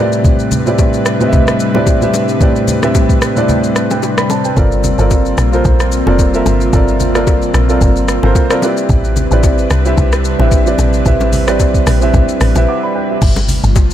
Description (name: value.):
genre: amapiano.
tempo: 111 BPM.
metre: 4/4.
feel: swing 55% on 16ths.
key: unclear.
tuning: A4 = 442 Hz.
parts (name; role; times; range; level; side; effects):
dark grand piano; accompaniment; 0.0-13.4 s; A2 to D6; -15 LUFS; right 1 dB; none.
airy breathy pad; sustained chords; 0.0-13.9 s; C3 to B4; -19 LUFS; left 1 dB; chorus.
smooth R&B drum kit; drums; 0.1-13.9 s; crash cymbal, hi-hat, kick drum, rim click, shaker; -15 LUFS; equal; none.
congas and bongos; percussion; 0.2-13.9 s; none; -21 LUFS; left 1 dB; none.
tight log drum bass; bass; 4.6-13.9 s; F1 to C2; -14 LUFS; equal; none.
room: little or no reverb.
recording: none.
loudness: -10 LUFS.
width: side -11 dB against mid.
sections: 0.0-13.2 A section.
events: break 3.5-4.6, 12.7-13.2.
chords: 0.0 Am11; 4.6 Gm11; 8.6 Am11; 13.2 Gm11.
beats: | 0.24 0.79 1.33 1.87 | 2.41 2.95 3.49 4.03 | 4.57 5.11 5.65 6.19 | 6.73 7.27 7.81 8.35 | 8.89 9.43 9.97 10.52 | 11.06 11.60 12.14 12.68 | 13.22 13.76.